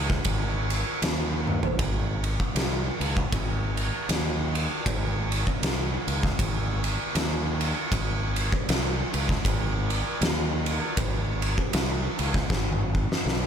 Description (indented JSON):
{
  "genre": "stoner and doom metal",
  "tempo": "78 BPM",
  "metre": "4/4",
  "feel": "swing 59% on 8ths",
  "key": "unclear",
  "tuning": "A4 = 440 Hz",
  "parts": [
    { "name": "growling fingered electric bass", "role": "bass", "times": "0.0-13.5 s", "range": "Ab1 to Eb2", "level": "-28 LUFS", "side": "equal", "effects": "overdrive" },
    { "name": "oversized low-tuned drum kit", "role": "drums", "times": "0.1-13.5 s", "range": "kick drum, ride cymbal, snare drum, toms", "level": "-26 LUFS", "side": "equal", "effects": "none" }
  ],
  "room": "little or no reverb",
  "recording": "none",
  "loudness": "-24 LUFS",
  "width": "side -8 dB against mid",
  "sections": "0.0-13.5 A section",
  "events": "drum fill 1.4-1.8, 12.5-13.5",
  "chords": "none"
}